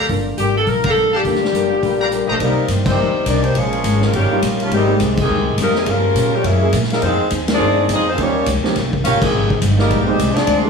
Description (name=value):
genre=jazz, big band swing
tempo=208 BPM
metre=4/4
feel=swing 60% on 8ths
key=unclear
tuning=A4 = 439 Hz
part: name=warm saxophone section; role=melody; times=0.0-10.7 s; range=Eb3 to F5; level=-19 LUFS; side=left 2 dB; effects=none
part: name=clear trumpet section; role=stabs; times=0.0-2.4 s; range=G4 to Bb5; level=-23 LUFS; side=left 1 dB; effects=none
part: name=upright bass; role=bass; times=0.0-10.7 s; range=Eb1 to Bb2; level=-20 LUFS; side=equal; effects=none
part: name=picked old ladder-braced acoustic guitar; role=accompaniment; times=0.1-10.7 s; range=G2 to Bb4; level=-24 LUFS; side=left 9 dB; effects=none
part: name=warm grand piano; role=accompaniment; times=0.1-10.7 s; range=F3 to D5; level=-24 LUFS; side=right 6 dB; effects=none
part: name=swinging big-band drum kit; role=drums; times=0.1-10.6 s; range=crash cymbal, hi-hat, kick drum, ride cymbal, snare drum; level=-22 LUFS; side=left 1 dB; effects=none
part: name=mellow trombone section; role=second line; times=1.1-10.7 s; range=Bb2 to F4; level=-23 LUFS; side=right 2 dB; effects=none
room=light reverb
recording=studio ambience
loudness=-14 LUFS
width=side -5 dB against mid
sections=0.0-2.4 A section; 2.4-10.7 B section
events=band accent 0.8, 2.8, 5.1, 7.5, 9.2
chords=0.1 Gm7; 2.4 Cm7; 3.6 Bbm7; 4.1 Eb7; 4.7 Abmaj7; 5.9 Gm7b5; 6.4 F#9; 7.0 Fm7; 8.2 Eb7; 9.3 Abmaj7